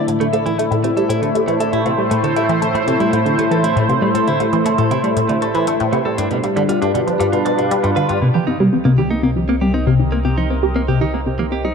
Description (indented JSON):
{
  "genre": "ambient, sequencer-driven space music",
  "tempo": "118 BPM",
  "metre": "4/4",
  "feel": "straight",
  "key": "A minor, C minor from 8.2 s",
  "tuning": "A4 = 443 Hz",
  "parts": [
    { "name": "sweeping resonant pad", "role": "sustained chords", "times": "0.0-11.7 s", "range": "A2 to Eb5", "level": "-19 LUFS", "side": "equal", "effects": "chorus" },
    { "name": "direct-recorded clean electric guitar", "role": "arpeggios", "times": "0.0-11.7 s", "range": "G3 to D5", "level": "-24 LUFS", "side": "right 3 dB", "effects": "auto-pan, analog delay" },
    { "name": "resonant blip pluck", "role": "riff", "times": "0.1-11.7 s", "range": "G2 to C4", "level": "-18 LUFS", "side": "left 1 dB", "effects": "phaser, cassette tape, analog delay" },
    { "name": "electronic hi-hat and woodblock", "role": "percussion", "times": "0.1-8.2 s", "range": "none", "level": "-34 LUFS", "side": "left 4 dB", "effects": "analog delay" },
    { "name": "analog drone", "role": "bass", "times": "8.9-11.7 s", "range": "C2", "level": "-23 LUFS", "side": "equal", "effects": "chorus" }
  ],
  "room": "moderate plate reverb, RT60 2.6 s",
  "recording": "dark, warm production, faint mains hum",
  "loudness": "-14 LUFS",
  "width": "side -6 dB against mid",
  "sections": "0.0-8.2 A section; 8.2-11.7 B section",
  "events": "filter sweep on synth arpeggio sound 8.2-11.7",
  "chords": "0.1 Am; 6.2 G7; 8.2 Cm7"
}